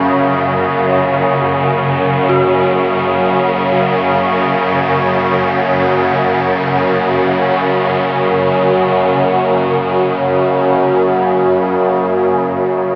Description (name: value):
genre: dark ambient drone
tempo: free time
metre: none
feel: none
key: F# major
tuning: A4 = 440 Hz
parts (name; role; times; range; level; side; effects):
- deep dark ambient pad; sustained chords; 0.0-13.0 s; F#4 to F#5; -18 LUFS; equal; chorus, built-in reverb
- dark detuned synth bell; arpeggios; 0.0-13.0 s; C#4 to F#4; -24 LUFS; equal; chorus, tape echo
- swarming drone; drone; 0.0-13.0 s; F#2 to C#3; -16 LUFS; equal; built-in reverb
room: wet cathedral reverb, RT60 5.2 s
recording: in a vast, echoing space, small speaker sound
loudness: -14 LUFS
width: mono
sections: 0.0-13.0 A section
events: fade-in on synth bell 0.0-13.0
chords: 0.0 F#5